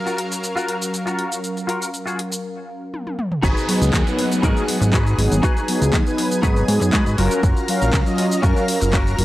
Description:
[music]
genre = nu-disco, nu disco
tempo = 120 BPM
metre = 4/4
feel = straight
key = G# dorian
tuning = A4 = 442 Hz
[part]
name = mellow synth brass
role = accompaniment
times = 0.0-9.2 s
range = F#3 to E#5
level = -22 LUFS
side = equal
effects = chorus, cassette tape, sidechain pumping, tape echo
[part]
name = lush unison pad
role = sustained chords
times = 0.0-9.2 s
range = F#3 to A#5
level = -32 LUFS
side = equal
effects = chorus, sidechain pumping
[part]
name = direct-recorded clean electric guitar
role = riff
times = 0.1-9.2 s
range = C#4 to B4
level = -26 LUFS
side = left 1 dB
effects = ensemble chorus, low-pass filter, tape echo
[part]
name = house drum kit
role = drums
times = 0.1-9.2 s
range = handclaps, hi-hat, shaker, toms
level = -27 LUFS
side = equal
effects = overdrive
[part]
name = fat analog bass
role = bass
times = 3.4-9.2 s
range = F#1 to G#2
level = -19 LUFS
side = equal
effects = sidechain pumping
[part]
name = electronic kick drum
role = drums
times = 3.4-9.0 s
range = none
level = -19 LUFS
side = equal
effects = overdrive
[part]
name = downlifter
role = sound effects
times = 3.4-7.4 s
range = none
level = -32 LUFS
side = right 2 dB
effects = none
[sound]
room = light reverb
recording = dry, gritty hardware recording, transformer saturation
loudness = -17 LUFS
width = side -16 dB against mid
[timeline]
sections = 0.0-3.4 A section; 3.4-9.2 B section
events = break 2.4-3.4; drum fill 2.9-3.4; drop 3.4-9.2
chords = 0.0 F#maj7; 3.4 G#m7; 7.2 F#maj7

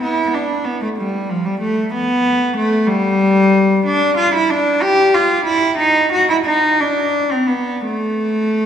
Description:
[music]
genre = classical, baroque-style suite movement for unaccompanied cello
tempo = 56-63 BPM (dotted quarters)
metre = 12/8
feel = rubato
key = A minor from 3.9 s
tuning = A4 = 436 Hz
[part]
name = rich cello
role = solo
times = 0.0-8.7 s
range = F3 to G4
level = -14 LUFS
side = equal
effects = none
[sound]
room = wet church reverb, RT60 2.9 s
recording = small room ambience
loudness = -14 LUFS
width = side -9 dB against mid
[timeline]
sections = 0.0-8.7 A section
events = none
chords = none

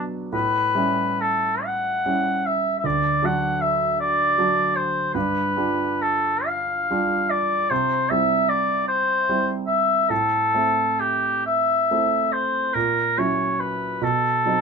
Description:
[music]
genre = classical, romantic duo for oboe and grand piano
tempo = 41-52 BPM (dotted quarters)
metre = 12/8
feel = rubato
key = unclear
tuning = A4 = 440 Hz
[part]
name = warm oboe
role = melody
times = 0.0-14.6 s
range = G4 to F#5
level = -20 LUFS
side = left 1 dB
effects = none
[part]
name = clear concert grand piano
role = accompaniment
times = 0.0-14.6 s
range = D2 to F#4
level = -26 LUFS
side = right 5 dB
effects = none
[sound]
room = light reverb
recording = minimal, uncompressed stereo recording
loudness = -19 LUFS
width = side -5 dB against mid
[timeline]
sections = 0.0-14.6 A section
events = none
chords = 0.3 A7; 2.8 D; 5.2 G7; 7.7 C; 10.1 Am; 12.8 F#7/A#; 14.0 B7b9

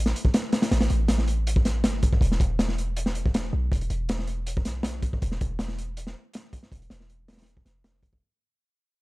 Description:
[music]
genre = drum and bass, jungle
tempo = 160 BPM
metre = 4/4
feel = straight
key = unclear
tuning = A4 = 440 Hz
[part]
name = warm 808-style bass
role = bass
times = 0.0-8.2 s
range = E1 to B1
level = -27 LUFS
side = equal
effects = tube saturation
[part]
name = crunchy breakbeat drum kit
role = drums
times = 0.1-8.2 s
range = hi-hat, kick drum, snare drum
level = -25 LUFS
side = equal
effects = none
[sound]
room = little or no reverb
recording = dark, warm production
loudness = -23 LUFS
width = side -21 dB against mid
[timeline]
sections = 0.0-8.2 A section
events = drop 0.0-8.2; fade-out 2.2-8.2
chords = none

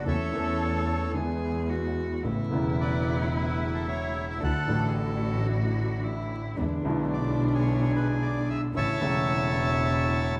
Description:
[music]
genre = tango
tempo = 110 BPM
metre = 4/4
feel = rubato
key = A major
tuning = A4 = 440 Hz
[part]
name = bandoneon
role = melody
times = 0.0-10.4 s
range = E4 to A5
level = -33 LUFS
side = equal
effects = none
[part]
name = rich cello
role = second line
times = 0.0-10.4 s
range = C#4 to A4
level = -36 LUFS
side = equal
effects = none
[part]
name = warm concert grand piano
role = accompaniment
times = 0.1-10.4 s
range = E1 to A4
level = -32 LUFS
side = equal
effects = none
[part]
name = dark studio string section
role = stabs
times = 0.1-10.4 s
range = C#3 to E4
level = -42 LUFS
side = equal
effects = none
[part]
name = warm double bass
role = bass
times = 0.1-10.4 s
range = E1 to E2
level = -32 LUFS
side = equal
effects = none
[sound]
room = wet large studio reverb, RT60 1.1 s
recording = band playing live in one room, vinyl crackle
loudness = -27 LUFS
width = mono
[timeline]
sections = 0.0-10.4 A section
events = none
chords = 0.1 A/E; 1.1 E; 2.2 Aadd9; 4.4 Dadd9; 6.6 E7; 8.7 A

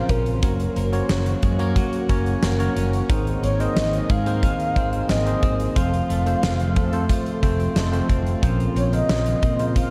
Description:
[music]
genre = 1980s-style pop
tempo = 90 BPM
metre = 4/4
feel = straight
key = unclear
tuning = A4 = 440 Hz
[part]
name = mellow horn-like synth lead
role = melody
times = 0.0-9.9 s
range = Bb4 to F5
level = -30 LUFS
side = equal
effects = chorus, tape echo
[part]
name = bell-like tine electric piano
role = accompaniment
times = 0.0-9.9 s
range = Ab2 to A5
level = -28 LUFS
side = equal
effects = none
[part]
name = ethereal airy pad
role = sustained chords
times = 0.0-9.9 s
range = Bb3 to Db6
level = -39 LUFS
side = equal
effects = none
[part]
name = twelve-string electric guitar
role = riff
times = 0.0-9.9 s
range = Eb3 to F4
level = -33 LUFS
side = equal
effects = lush chorus, tape echo
[part]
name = fretless electric bass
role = bass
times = 0.1-9.8 s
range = F1 to Bb2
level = -26 LUFS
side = equal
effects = none
[part]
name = huge arena drum kit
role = drums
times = 0.1-9.9 s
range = hi-hat, kick drum, snare drum, tambourine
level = -26 LUFS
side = equal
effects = none
[part]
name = mellow synth brass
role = stabs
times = 5.8-7.0 s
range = F3 to A4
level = -37 LUFS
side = equal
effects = none
[sound]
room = light reverb, small room ambience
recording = dark, warm production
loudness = -21 LUFS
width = mono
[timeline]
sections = 0.0-9.9 A section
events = band accent 5.8-8.4; tine electric piano fill 7.4-8.4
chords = 0.4 Gb; 3.1 Abadd9; 5.8 F; 8.4 Bbmadd9

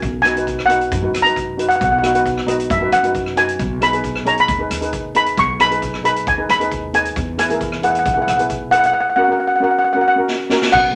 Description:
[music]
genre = calypso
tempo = 134 BPM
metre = 4/4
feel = straight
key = F# mixolydian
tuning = A4 = 441 Hz
[part]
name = steel pan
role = melody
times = 0.0-11.0 s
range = D#5 to C#6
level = -18 LUFS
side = equal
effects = none
[part]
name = steel pan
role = accompaniment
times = 0.0-10.7 s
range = C#4 to C#5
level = -24 LUFS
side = equal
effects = none
[part]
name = upright bass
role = bass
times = 0.0-11.0 s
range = B1 to F#2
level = -29 LUFS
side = equal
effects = none
[part]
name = street-band drum kit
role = drums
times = 0.0-10.8 s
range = crash cymbal, hi-hat, kick drum, rim click, snare drum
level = -28 LUFS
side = equal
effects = none
[sound]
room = wet small room reverb, RT60 0.6 s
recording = none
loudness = -17 LUFS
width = mono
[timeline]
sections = 0.0-10.7 A section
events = drum fill 10.3-10.7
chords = 0.0 B; 3.6 G#m/B; 7.2 E; 8.9 F#

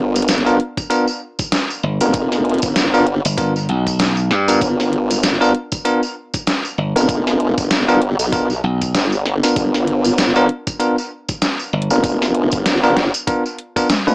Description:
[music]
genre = glitch hop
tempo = 97 BPM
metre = 4/4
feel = swing 58% on 16ths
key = unclear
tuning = A4 = 442 Hz
[part]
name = bell-like tine electric piano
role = stabs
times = 0.0-14.1 s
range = B3 to B4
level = -17 LUFS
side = equal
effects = vintage 12-bit sampler grit, sidechain pumping, dub echo
[part]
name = formant-sweep wobble bass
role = bass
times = 0.0-14.1 s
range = F1 to B1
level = -18 LUFS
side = equal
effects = chorus, tube saturation
[part]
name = dubstep drum kit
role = drums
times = 0.2-14.1 s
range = hi-hat, snare drum, toms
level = -19 LUFS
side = equal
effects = none
[part]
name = tambourine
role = percussion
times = 0.2-14.1 s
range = none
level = -26 LUFS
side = right 1 dB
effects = none
[part]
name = electronic kick drum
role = drums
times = 0.8-13.9 s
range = none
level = -24 LUFS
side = equal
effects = none
[part]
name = slap bass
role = bass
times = 1.8-11.9 s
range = G1 to G2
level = -17 LUFS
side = equal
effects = tube saturation
[sound]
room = light reverb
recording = small speaker sound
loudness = -14 LUFS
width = side -29 dB against mid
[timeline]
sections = 0.0-14.1 A section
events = drum fill 13.9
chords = 0.0 G7#9

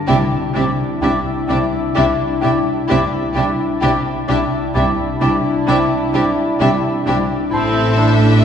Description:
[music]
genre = cinematic, emotional film score for orchestra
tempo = 65 BPM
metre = 4/4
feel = rubato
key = unclear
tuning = A4 = 440 Hz
[part]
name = concert harp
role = arpeggios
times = 0.0-8.4 s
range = G2 to G4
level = -24 LUFS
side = left 4 dB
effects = none
[part]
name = rich studio violin section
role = melody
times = 0.1-8.4 s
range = E5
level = -25 LUFS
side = left 5 dB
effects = none
[part]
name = clear clarinet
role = second line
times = 0.1-8.1 s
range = E4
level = -27 LUFS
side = left 2 dB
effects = none
[part]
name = clear studio violin section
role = second line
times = 0.1-8.4 s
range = G4 to A4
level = -27 LUFS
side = left 2 dB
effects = none
[part]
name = mellow hollow silver concert flute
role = second line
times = 0.1-8.1 s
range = G5 to A5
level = -26 LUFS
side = right 2 dB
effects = none
[part]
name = warm oboe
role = second line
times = 0.1-8.2 s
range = C5 to D5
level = -25 LUFS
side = equal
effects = none
[part]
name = clear symphonic viola section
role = accompaniment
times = 0.1-8.4 s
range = C4 to D4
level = -24 LUFS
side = left 1 dB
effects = none
[part]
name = warm French horn section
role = sustained chords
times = 0.1-8.4 s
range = C4 to E4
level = -21 LUFS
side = left 2 dB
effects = none
[part]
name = warm symphonic cello section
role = bass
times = 0.1-8.4 s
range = A2 to C3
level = -22 LUFS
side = right 3 dB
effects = none
[part]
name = warm symphonic double bass section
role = bass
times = 0.1-8.4 s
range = A1 to C2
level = -22 LUFS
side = right 3 dB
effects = none
[sound]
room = wet church reverb, RT60 2.5 s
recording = recorded in a church or concert hall, nothing above 10.7 kHz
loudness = -14 LUFS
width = side -8 dB against mid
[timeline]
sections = 0.0-8.4 A section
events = none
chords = 0.1 Cadd9; 7.5 Am

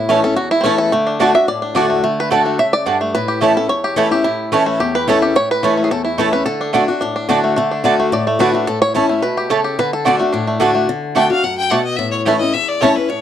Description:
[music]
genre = bluegrass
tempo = 217 BPM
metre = 4/4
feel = straight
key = D major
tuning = A4 = 439 Hz
[part]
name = bluegrass banjo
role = melody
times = 0.0-12.9 s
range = D3 to E5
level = -18 LUFS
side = right 1 dB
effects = none
[part]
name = picked swing-style acoustic guitar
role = accompaniment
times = 0.0-13.2 s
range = E2 to F#4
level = -18 LUFS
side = left 4 dB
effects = none
[part]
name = mandolin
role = stabs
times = 0.1-12.9 s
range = A3 to A5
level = -18 LUFS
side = right 6 dB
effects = none
[part]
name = clear fiddle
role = melody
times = 11.2-13.2 s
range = B4 to G5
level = -18 LUFS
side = left 4 dB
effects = none
[sound]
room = small room ambience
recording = dry, close 1970s-style studio recording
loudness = -13 LUFS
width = side -10 dB against mid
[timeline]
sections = 0.0-2.0 A section; 2.0-10.9 A section; 10.9-13.2 B section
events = five-string banjo solo 0.0-10.9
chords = 0.0 A; 0.9 D; 3.1 A; 6.5 D; 8.7 A; 9.8 D; 12.0 A

